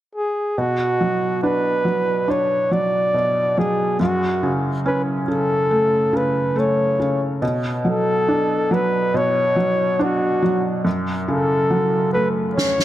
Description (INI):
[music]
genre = pop ballad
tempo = 70 BPM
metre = 4/4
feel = straight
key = unclear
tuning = A4 = 440 Hz
[part]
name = breathy flugelhorn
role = melody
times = 0.2-12.8 s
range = F#4 to D5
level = -20 LUFS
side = equal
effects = none
[part]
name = felt-muted upright piano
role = accompaniment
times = 0.6-12.8 s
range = F#2 to D4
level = -21 LUFS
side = right 1 dB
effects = none
[part]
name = snare drum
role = drums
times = 12.6-12.8 s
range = none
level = -20 LUFS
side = right 1 dB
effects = none
[sound]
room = light reverb, studio ambience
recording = none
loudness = -17 LUFS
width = side -13 dB against mid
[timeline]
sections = 0.6-7.4 A section; 7.4-12.8 B section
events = drum fill 12.6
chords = 0.0 N.C.; 0.6 Bm; 4.0 F#m; 7.4 Bmadd9; 10.9 F#m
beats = | 0.57 1.43 2.29 3.14 | 4.00 4.86 5.71 6.57 | 7.43 8.29 9.14 10.00 | 10.86 11.71 12.57